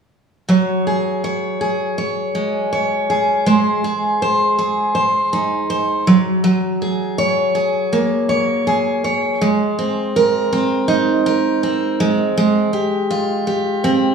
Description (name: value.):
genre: pop.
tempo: 81 BPM.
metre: 4/4.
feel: swing 55% on 16ths.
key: unclear.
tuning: A4 = 444 Hz.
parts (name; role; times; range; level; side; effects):
picked steel-string acoustic guitar; solo; 0.5-14.1 s; Gb3 to Db5; -15 LUFS; right 1 dB; none.
room: wet large studio reverb, RT60 1.3 s.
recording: band playing live in one room, studio reverb.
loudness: -15 LUFS.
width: side -6 dB against mid.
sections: 0.5-6.4 A section; 6.4-14.1 B section.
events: none.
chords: 0.5 Gbsus2; 3.5 Ab; 6.1 N.C.; 6.4 Gbadd9; 9.4 Abadd9; 12.0 Fmadd9/Ab.